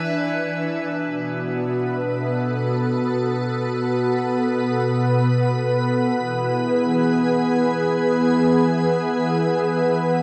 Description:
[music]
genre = ambient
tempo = free time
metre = none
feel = none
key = B dorian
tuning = A4 = 440 Hz
[part]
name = trumpet with metal mute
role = melody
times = 0.0-0.5 s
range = B4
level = -36 LUFS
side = equal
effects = dub echo
[part]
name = soft additive organ-like pad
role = sustained chords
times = 0.0-10.2 s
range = B2 to G#5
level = -21 LUFS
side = equal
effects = ensemble chorus, built-in reverb
[sound]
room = wet echo chamber reverb, RT60 2.0 s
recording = none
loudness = -21 LUFS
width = mono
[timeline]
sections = 0.9-10.2 A section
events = none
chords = 0.0 E7; 0.9 Bm7; 6.1 E

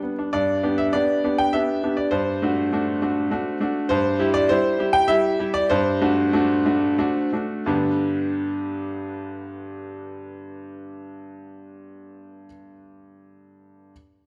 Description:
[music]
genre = classical-period piano sonatina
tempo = 86-102 BPM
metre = 3/4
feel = rubato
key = G major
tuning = A4 = 436 Hz
[part]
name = clear baby grand piano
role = solo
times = 0.0-13.9 s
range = G2 to G5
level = -23 LUFS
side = equal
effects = none
[sound]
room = wet recital hall reverb, RT60 1.7 s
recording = dark, warm production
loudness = -22 LUFS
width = mono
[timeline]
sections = 0.3-7.7 A section; 7.7-11.7 B section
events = slowing down 3.0-7.7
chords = 0.3 G; 2.1 D7/G; 3.9 Cadd9/G; 5.7 D7/G; 7.7 G

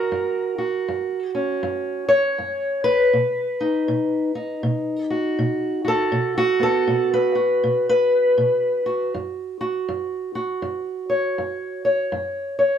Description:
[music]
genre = acoustic country blues, solo or duo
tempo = 80 BPM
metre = 4/4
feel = swing 61% on 8ths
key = F# major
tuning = A4 = 440 Hz
[part]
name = fingerpicked steel-string acoustic guitar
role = solo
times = 0.0-12.8 s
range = F#2 to C#5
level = -19 LUFS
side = equal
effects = none
[sound]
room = moderate studio reverb, RT60 0.6 s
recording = none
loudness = -19 LUFS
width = side -8 dB against mid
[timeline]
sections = 0.0-12.8 A section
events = none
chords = 0.0 F#; 3.1 B; 6.1 B5; 9.1 F#5

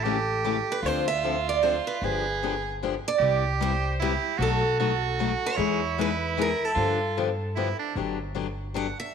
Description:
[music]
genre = acoustic string swing (jazz manouche)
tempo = 152 BPM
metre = 3/4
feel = swing 62% on 8ths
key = unclear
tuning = A4 = 441 Hz
[part]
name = picked steel-string acoustic guitar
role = melody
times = 0.0-9.1 s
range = G4 to F#5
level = -28 LUFS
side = right 4 dB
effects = none
[part]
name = edgy soprano saxophone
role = second line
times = 0.0-7.9 s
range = D4 to Ab4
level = -30 LUFS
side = right 7 dB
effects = none
[part]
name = upright bass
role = bass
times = 0.0-8.9 s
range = G1 to G2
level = -31 LUFS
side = equal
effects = none
[part]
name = picked steel-string acoustic guitar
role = accompaniment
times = 0.1-8.9 s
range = B2 to A4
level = -30 LUFS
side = left 10 dB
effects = none
[sound]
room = moderate echo chamber reverb, RT60 2.0 s, small room ambience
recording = 1960s-style stereo with parts hard left and right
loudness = -24 LUFS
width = side -7 dB against mid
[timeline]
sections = 0.0-8.0 A section; 8.0-9.1 B section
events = steel-string acoustic guitar solo 8.0-9.1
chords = 0.0 A7; 0.8 Dm9; 2.0 G7b9; 3.2 Cmaj7; 4.4 B7; 5.6 Emaj7; 6.8 G9; 8.0 Gmaj7

